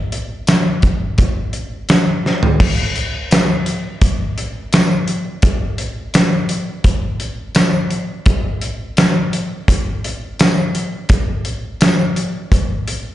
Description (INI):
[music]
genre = rock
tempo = 85 BPM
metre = 4/4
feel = straight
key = none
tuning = none
[part]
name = big rock drum kit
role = drums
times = 0.1-13.0 s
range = crash cymbal, hi-hat, kick drum, snare drum, tambourine, toms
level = -14 LUFS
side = equal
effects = slapback echo
[sound]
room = wet club reverb, RT60 0.6 s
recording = live gig heard through the venue's PA, recital hall reverb, nothing above 10.3 kHz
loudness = -14 LUFS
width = side -14 dB against mid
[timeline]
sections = 0.0-2.6 A section; 2.6-13.1 B section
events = drum fill 2.2-2.6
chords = none